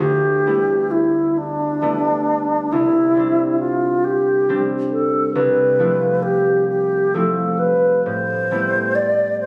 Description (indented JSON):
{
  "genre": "classical, impressionist duo for alto flute and harp",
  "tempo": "44 BPM (dotted quarters)",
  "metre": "6/8",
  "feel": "rubato",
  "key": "unclear",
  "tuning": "A4 = 442 Hz",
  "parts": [
    { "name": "bright alto flute", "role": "melody", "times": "0.0-9.5 s", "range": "D4 to D5", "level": "-19 LUFS", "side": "equal", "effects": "none" },
    { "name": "concert harp", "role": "accompaniment", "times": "0.0-9.5 s", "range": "C2 to E4", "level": "-25 LUFS", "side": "equal", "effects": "none" }
  ],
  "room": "moderate scoring stage reverb, RT60 1.8 s",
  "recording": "recorded on a phone in the room, studio ambience, compression",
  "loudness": "-18 LUFS",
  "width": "mono",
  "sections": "0.0-9.5 A section",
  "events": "none",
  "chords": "0.0 A9sus4/D; 2.7 Cadd9; 5.3 Fmaj7/C; 8.1 Am9"
}